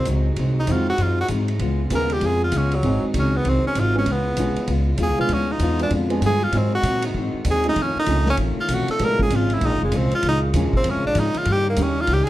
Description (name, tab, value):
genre	jazz, big band swing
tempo	195 BPM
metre	4/4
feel	swing 63% on 8ths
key	unclear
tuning	A4 = 440 Hz
part	edgy tenor saxophone	melody	0.0-12.3 s	Gb3 to Bb4	-22 LUFS	equal	none
part	warm trombone section	sustained chords	0.0-12.3 s	B2 to Ab4	-30 LUFS	right 1 dB	none
part	upright bass	bass	0.0-12.3 s	F1 to Bb2	-22 LUFS	equal	none
part	picked steel-string acoustic guitar	accompaniment	0.1-12.3 s	F2 to G4	-28 LUFS	left 4 dB	none
part	vintage drum kit	drums	0.1-12.3 s	hi-hat, kick drum, ride cymbal, snare drum	-29 LUFS	equal	none
part	warm baby grand piano	accompaniment	0.7-12.0 s	Eb3 to A4	-27 LUFS	right 3 dB	none
room	light reverb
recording	dark, warm production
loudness	-18 LUFS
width	side -15 dB against mid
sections	0.0-12.3 A section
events	tenor saxophone solo 0.0-12.3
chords	0.0 Ab7; 1.6 Db7; 2.8 Ab7; 4.1 Db7; 5.3 Ddim7; 6.5 Ab7; 7.8 F7alt; 9.0 Bbm7; 11.5 Eb7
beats	0.07 | 0.38 0.68 0.99 1.30 | 1.61 1.92 2.22 2.53 | 2.84 3.15 3.46 3.76 | 4.07 4.38 4.69 5.00 | 5.30 5.61 5.92 6.23 | 6.54 6.84 7.15 7.46 | 7.77 8.08 8.39 8.69 | 9.00 9.31 9.62 9.93 | 10.24 10.54 10.85 11.16 | 11.47 11.78 12.09